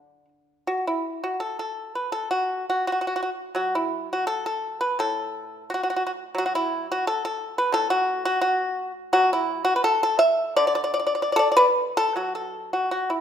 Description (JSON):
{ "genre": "chinese traditional, Chinese solo plucked strings", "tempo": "72-89 BPM", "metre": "4/4", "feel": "rubato", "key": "unclear", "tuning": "A4 = 440 Hz", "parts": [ { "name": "pipa", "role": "solo", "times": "0.0-13.2 s", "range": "A2 to E5", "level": "-22 LUFS", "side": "equal", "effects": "none" } ], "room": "moderate scoring stage reverb, RT60 1.7 s", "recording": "minimal, uncompressed stereo recording", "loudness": "-22 LUFS", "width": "side -9 dB against mid", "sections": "0.7-12.2 A section; 12.2-13.2 B section", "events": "none", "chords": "none" }